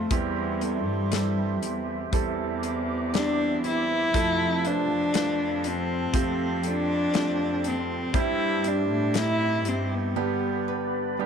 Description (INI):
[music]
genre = pop ballad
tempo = 60 BPM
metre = 4/4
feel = straight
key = C major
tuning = A4 = 440 Hz
[part]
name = dark cello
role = melody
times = 0.0-11.0 s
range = G3 to E4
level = -27 LUFS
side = left 2 dB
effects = none
[part]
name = warm concert grand piano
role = accompaniment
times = 0.0-11.3 s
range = G2 to C5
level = -31 LUFS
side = right 11 dB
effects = none
[part]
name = large flute ensemble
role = sustained chords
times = 0.0-11.3 s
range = C4 to D6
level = -36 LUFS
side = right 1 dB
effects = none
[part]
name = nylon-string guitar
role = arpeggios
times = 0.0-11.3 s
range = E3 to C5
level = -38 LUFS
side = left 12 dB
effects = none
[part]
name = warm symphonic cello section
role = bass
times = 0.0-10.1 s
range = E2 to A2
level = -30 LUFS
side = equal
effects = none
[part]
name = modern studio drum kit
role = drums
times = 0.1-9.9 s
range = hi-hat, kick drum, snare drum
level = -28 LUFS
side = left 2 dB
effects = none
[sound]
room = light reverb, studio reverb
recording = 1960s-style stereo with parts hard left and right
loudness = -23 LUFS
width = side -7 dB against mid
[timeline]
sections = 0.0-11.3 A section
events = break 10.2-11.3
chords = 0.1 C/E; 4.1 F; 8.1 C/G; 10.2 G